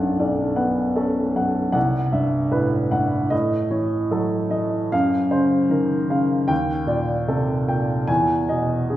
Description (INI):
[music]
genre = classical, impressionist solo piano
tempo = 76 BPM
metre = 4/4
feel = rubato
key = unclear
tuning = A4 = 441 Hz
[part]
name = warm baby grand piano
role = solo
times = 0.0-9.0 s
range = B1 to G#5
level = -19 LUFS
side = equal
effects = none
[sound]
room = wet recital hall reverb, RT60 1.4 s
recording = heard from further back in the room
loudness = -19 LUFS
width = side -13 dB against mid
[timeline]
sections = 0.0-9.0 A section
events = none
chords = 0.0 Bm7; 1.8 Cmaj7#11; 3.3 A; 4.9 F#maj7#11; 6.5 D#maj7#11; 8.1 Emaj7